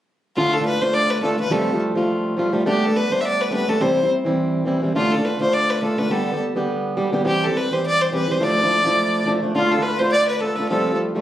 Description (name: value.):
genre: celtic folk, Celtic reel.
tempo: 209 BPM.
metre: 4/4.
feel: swing 56% on 8ths.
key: D dorian.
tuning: A4 = 439 Hz.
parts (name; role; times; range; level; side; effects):
rich fiddle; melody; 0.4-11.0 s; F4 to E5; -21 LUFS; equal; none.
fingerpicked plugged-in swing-style acoustic guitar; accompaniment; 0.4-11.2 s; D2 to G4; -20 LUFS; equal; none.
bright wooden flute; second line; 9.5-11.0 s; F4 to D5; -22 LUFS; left 1 dB; none.
room: moderate small room ambience, RT60 0.5 s.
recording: recorded on a phone in the room, club reverb, compression.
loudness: -18 LUFS.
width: side -12 dB against mid.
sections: 0.4-9.6 A section; 9.6-11.2 A section.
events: none.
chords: 0.4 Dm; 1.5 Fadd9; 2.7 Gadd9; 3.8 C; 5.0 Dm; 6.1 G/D; 7.3 C; 8.4 Dmadd9; 9.6 Dm; 10.7 Fadd9.